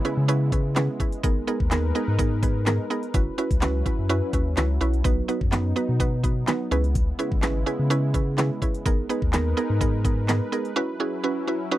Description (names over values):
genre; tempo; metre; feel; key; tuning
dance-pop; 126 BPM; 4/4; straight; unclear; A4 = 440 Hz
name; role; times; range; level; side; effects
mallet-like synth pluck; accompaniment; 0.0-11.8 s; B3 to B4; -26 LUFS; right 3 dB; chorus, sidechain pumping
warm analog pad; sustained chords; 0.0-11.8 s; C#3 to B4; -33 LUFS; left 2 dB; chorus, sidechain pumping
pop drum kit; drums; 0.1-10.8 s; handclaps, hi-hat, kick drum, snare drum; -25 LUFS; equal; none
warm sub bass; bass; 0.2-10.4 s; F#1 to C#3; -24 LUFS; equal; sidechain pumping
room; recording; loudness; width
little or no reverb; dry, close 1970s-style studio recording; -21 LUFS; side -15 dB against mid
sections
0.0-11.8 A section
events
break 10.8-11.8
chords
0.0 C#m7; 1.2 G#madd9; 3.1 F#7sus4; 5.0 B; 6.7 C#m7; 8.9 G#madd9; 10.8 F#7sus4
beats
0.29 0.76 | 1.24 1.72 2.19 2.67 | 3.14 3.62 4.09 4.57 | 5.05 5.52 6.00 6.48 | 6.95 7.43 7.91 8.38 | 8.86 9.33 9.81 10.29 | 10.76 11.24 11.71